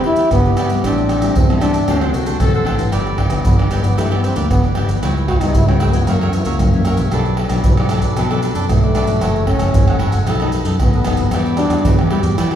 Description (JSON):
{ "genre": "samba and choro", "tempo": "114 BPM", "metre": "4/4", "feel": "straight", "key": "G major", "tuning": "A4 = 438 Hz", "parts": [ { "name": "mellow trombone", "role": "melody", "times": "0.0-12.1 s", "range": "C#3 to F#4", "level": "-20 LUFS", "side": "left 1 dB", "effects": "none" }, { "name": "cavaquinho", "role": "accompaniment", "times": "0.0-12.6 s", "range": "D4 to A5", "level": "-25 LUFS", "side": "right 3 dB", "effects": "none" }, { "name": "nylon-string guitar", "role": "accompaniment", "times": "0.0-12.6 s", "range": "F#2 to B4", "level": "-24 LUFS", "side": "left 4 dB", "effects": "none" }, { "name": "pandeiro, maracas, surdo and tamborim", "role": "percussion", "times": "0.0-12.6 s", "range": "none", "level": "-17 LUFS", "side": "right 1 dB", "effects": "none" }, { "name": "modern bright fingered electric bass", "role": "bass", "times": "0.3-12.6 s", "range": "F#1 to E3", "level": "-19 LUFS", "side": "equal", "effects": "none" }, { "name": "clear clarinet", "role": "second line", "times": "2.1-2.9 s", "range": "F#4 to A4", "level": "-24 LUFS", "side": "left 4 dB", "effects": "none" } ], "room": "wet recital hall reverb, RT60 1.6 s", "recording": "recorded in a church or concert hall", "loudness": "-13 LUFS", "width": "side -10 dB against mid", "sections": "0.0-2.9 A section; 2.9-12.6 B section", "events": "trombone solo 2.9-12.6", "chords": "0.0 Em7; 0.8 Am7; 1.9 D7; 2.9 G6; 5.0 C#m7b5; 6.1 F#7; 7.1 Bm7; 9.2 F#m7; 10.3 B7; 11.3 Em9" }